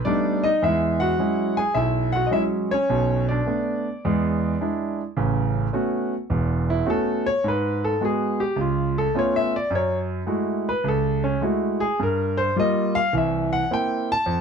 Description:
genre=solo jazz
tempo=106 BPM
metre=4/4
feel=swing 67% on 8ths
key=E major, A major from 5.2 s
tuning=A4 = 437 Hz
part: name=clear concert grand piano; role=solo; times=0.0-14.4 s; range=E1 to A5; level=-20 LUFS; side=right 1 dB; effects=none
room=light reverb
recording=close, detailed microphones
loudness=-20 LUFS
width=side -6 dB against mid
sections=0.0-5.2 A section; 5.2-14.4 B section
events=grand piano solo 5.2-14.4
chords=0.0 B7alt; 0.6 E69; 2.9 Bm7; 4.0 E7; 5.2 A69; 7.4 G#m7; 8.6 C#aug7; 9.7 F#m9; 12.0 Gm7; 13.1 C7

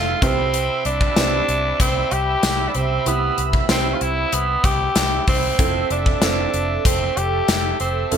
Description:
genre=1980s-style pop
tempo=95 BPM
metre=4/4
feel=straight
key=C major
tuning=A4 = 440 Hz
part: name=raspy tenor saxophone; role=melody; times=0.0-8.1 s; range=B3 to G4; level=-21 LUFS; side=equal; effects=ping-pong delay
part: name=warm baby grand piano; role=accompaniment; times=0.0-8.2 s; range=C3 to C5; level=-27 LUFS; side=right 5 dB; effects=analog chorus
part: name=brassy analog pad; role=sustained chords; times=0.0-8.2 s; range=A4 to E6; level=-28 LUFS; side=right 4 dB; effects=chorus
part: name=vintage muted fingered electric bass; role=bass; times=0.0-8.2 s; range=F1 to C2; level=-25 LUFS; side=equal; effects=none
part: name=gated 80s drum kit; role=drums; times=0.2-8.2 s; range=hi-hat, kick drum, snare drum, tambourine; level=-20 LUFS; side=left 1 dB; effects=none
room=moderate plate reverb, RT60 1.5 s, studio reverb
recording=bright 1980s-style digital production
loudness=-17 LUFS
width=side -8 dB against mid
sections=0.0-8.2 A section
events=none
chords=0.2 Cmaj7; 5.6 Fmaj7

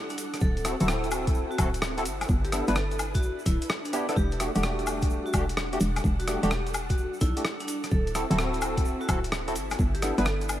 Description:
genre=UK garage, two-step garage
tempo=128 BPM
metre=4/4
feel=swing 67% on 16ths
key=E minor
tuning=A4 = 440 Hz
part: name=soft string machine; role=sustained chords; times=0.0-10.6 s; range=G3 to F#5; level=-39 LUFS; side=equal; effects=ensemble chorus, sidechain pumping
part: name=vibraphone with medium hard mallets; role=melody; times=0.1-10.5 s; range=D4 to A4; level=-37 LUFS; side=equal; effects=analog delay
part: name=boom bap sampler-style drum kit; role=drums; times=0.1-10.6 s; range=hi-hat, rim click, woodblock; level=-32 LUFS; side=left 1 dB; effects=none
part: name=egg shaker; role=percussion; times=0.1-10.6 s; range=none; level=-43 LUFS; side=right 4 dB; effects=none
part: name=hollow knocking FM bass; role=bass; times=0.4-10.6 s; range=D1 to B1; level=-29 LUFS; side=equal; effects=sidechain pumping
part: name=electronic kick drum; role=drums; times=0.4-9.9 s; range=none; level=-26 LUFS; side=equal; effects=none
part: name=barky tine electric piano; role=stabs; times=0.6-10.3 s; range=A3 to B4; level=-32 LUFS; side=equal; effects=ensemble chorus, analog delay
room=light reverb, digital ambience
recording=vinyl crackle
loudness=-24 LUFS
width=side -12 dB against mid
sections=0.0-10.6 A section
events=none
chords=0.2 D9; 2.1 G69; 4.2 Em11; 7.7 D9; 9.6 G69

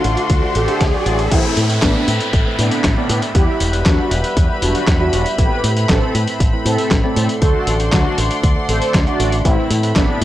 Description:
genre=italo disco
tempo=118 BPM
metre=4/4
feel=straight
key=A dorian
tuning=A4 = 437 Hz
part: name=mellow synth brass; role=melody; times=0.0-10.2 s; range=B3 to D5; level=-21 LUFS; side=equal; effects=chorus, analog delay
part: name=warm studio string section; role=sustained chords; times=0.0-10.2 s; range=C4 to C6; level=-24 LUFS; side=left 2 dB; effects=none
part: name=barky tine electric piano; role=stabs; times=0.0-10.2 s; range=A2 to E5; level=-25 LUFS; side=right 2 dB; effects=phaser
part: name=fingered electric bass with an envelope filter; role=bass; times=0.0-10.2 s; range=E1 to A2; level=-19 LUFS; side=equal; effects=none
part: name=dusty soul sampler-style drum kit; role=drums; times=0.0-10.2 s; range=crash cymbal, handclaps, hi-hat, snare drum, tambourine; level=-22 LUFS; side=equal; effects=overdrive, high-pass filter on hats, high-pass filter on snare, high-pass filter on cymbals, high-pass filter on perc, high-pass filter on room
part: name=riser and downlifter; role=sound effects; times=0.0-5.4 s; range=none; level=-24 LUFS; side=equal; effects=none
part: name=electronic kick drum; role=drums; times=0.3-10.1 s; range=none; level=-17 LUFS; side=equal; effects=none
room=digital ambience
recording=dry, gritty hardware recording, cassette tape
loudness=-13 LUFS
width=side -14 dB against mid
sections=0.0-1.3 A section; 1.3-10.2 B section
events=riser 0.0-1.3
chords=0.0 D7; 1.3 Amadd9; 3.4 Em; 5.4 Amadd9; 7.4 D7; 9.5 Amadd9

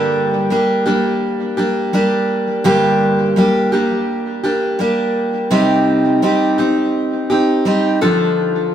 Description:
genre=pop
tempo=84 BPM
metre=4/4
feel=straight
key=G minor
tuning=A4 = 441 Hz
part: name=picked steel-string acoustic guitar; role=solo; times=0.0-8.7 s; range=G2 to A4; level=-14 LUFS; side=equal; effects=tape echo
room=moderate large studio reverb, RT60 0.8 s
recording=band playing live in one room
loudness=-13 LUFS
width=side -10 dB against mid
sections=0.0-8.7 A section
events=none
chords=0.0 Gm; 5.5 Cm; 8.0 Dm

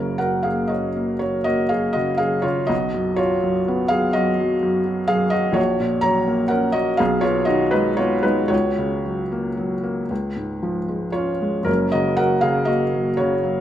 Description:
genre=classical, romantic nocturne for solo piano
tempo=37-43 BPM (dotted quarters)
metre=12/8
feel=rubato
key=F# major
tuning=A4 = 442 Hz
part: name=felt-muted upright piano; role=solo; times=0.0-13.6 s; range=F#1 to A#5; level=-18 LUFS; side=equal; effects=none
room=moderate recital hall reverb, RT60 1.7 s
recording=close, detailed microphones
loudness=-18 LUFS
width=side -11 dB against mid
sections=0.0-13.6 A section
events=none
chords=0.0 F#; 2.7 B; 5.6 F#/A#; 7.0 G#m/B; 8.5 F#/C#; 10.1 C#; 11.7 F#

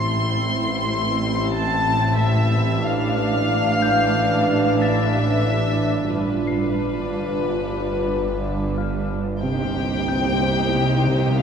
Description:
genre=cinematic, suspense film score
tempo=91 BPM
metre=5/4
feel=straight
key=unclear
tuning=A4 = 442 Hz
part: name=warm chamber violin section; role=melody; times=0.0-11.4 s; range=B4 to C6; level=-24 LUFS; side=left 3 dB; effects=none
part: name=dark chamber viola section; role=accompaniment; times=0.0-11.4 s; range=E3 to F4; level=-25 LUFS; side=right 2 dB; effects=none
part: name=clear chamber double bass section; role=bass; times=0.0-11.4 s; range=G1 to C2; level=-27 LUFS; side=right 1 dB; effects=none
part: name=dark chamber cello section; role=bass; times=0.0-11.4 s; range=C2 to A2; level=-28 LUFS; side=right 2 dB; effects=none
part: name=bowed-like drone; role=drone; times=0.0-11.4 s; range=G1 to C2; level=-27 LUFS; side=left 1 dB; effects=built-in reverb, phaser
part: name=small celesta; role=texture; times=0.0-11.4 s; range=F5 to C7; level=-34 LUFS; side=left 7 dB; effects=none
part: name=warm chamber violin section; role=second line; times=9.4-11.4 s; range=G4 to C5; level=-28 LUFS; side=left 2 dB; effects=none
part: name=smooth synth bass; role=riff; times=9.4-11.3 s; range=C3 to C4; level=-24 LUFS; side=right 2 dB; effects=none
room=wet cathedral reverb, RT60 4.2 s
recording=recorded in a church or concert hall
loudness=-18 LUFS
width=side -7 dB against mid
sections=0.0-9.4 A section; 9.4-11.4 B section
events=none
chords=0.0 Am; 2.8 Dmadd9/A; 6.1 G7; 9.4 Cm7

